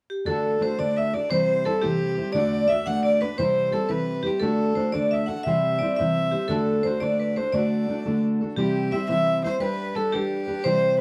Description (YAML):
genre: celtic folk, Celtic jig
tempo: 116 BPM (dotted quarters)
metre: 6/8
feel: straight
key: D mixolydian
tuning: A4 = 440 Hz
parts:
  - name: vibraphone with hard mallets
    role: melody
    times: 0.1-11.0 s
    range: G4 to F#5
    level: -27 LUFS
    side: equal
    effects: none
  - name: clear fiddle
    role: second line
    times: 0.3-11.0 s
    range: G4 to F#5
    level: -32 LUFS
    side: equal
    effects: none
  - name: fingerpicked steel-string acoustic guitar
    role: accompaniment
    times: 0.3-11.0 s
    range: C3 to D5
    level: -28 LUFS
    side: equal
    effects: none
room: moderate small room ambience, RT60 0.5 s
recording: dark, warm production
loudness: -24 LUFS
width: mono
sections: 0.3-8.6 A section; 8.6-11.0 B section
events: none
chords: 0.3 D; 1.3 C; 2.3 D; 3.4 C; 4.4 D; 5.5 C; 6.5 D; 8.6 C; 9.6 G